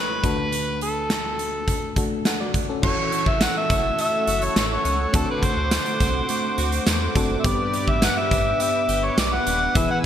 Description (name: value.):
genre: 1980s-style pop.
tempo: 104 BPM.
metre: 4/4.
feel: straight.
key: unclear.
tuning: A4 = 438 Hz.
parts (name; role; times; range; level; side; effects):
overdriven harmonica; melody; 0.0-10.0 s; A4 to F#5; -24 LUFS; equal; ping-pong delay.
FM electric piano; accompaniment; 0.0-10.1 s; A1 to F#5; -29 LUFS; left 3 dB; chorus.
big rock drum kit; drums; 0.2-9.9 s; crash cymbal, hi-hat, kick drum, snare drum, tambourine; -24 LUFS; right 1 dB; none.
brassy analog pad; sustained chords; 2.8-10.1 s; G4 to E6; -30 LUFS; equal; chorus.
clean electric guitar; riff; 2.8-10.1 s; E3 to G4; -30 LUFS; right 4 dB; ensemble chorus, ping-pong delay.
round analog bass; bass; 2.8-9.9 s; D#1 to E2; -27 LUFS; equal; none.
tambourine; percussion; 3.4-9.9 s; none; -39 LUFS; left 3 dB; none.
room: moderate lush hall reverb, RT60 2.7 s.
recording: bright 1980s-style digital production.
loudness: -19 LUFS.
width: side -10 dB against mid.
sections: 0.0-2.8 A section; 2.8-10.1 B section.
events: none.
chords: 0.2 D; 2.8 F#m7; 5.1 D7; 7.4 G.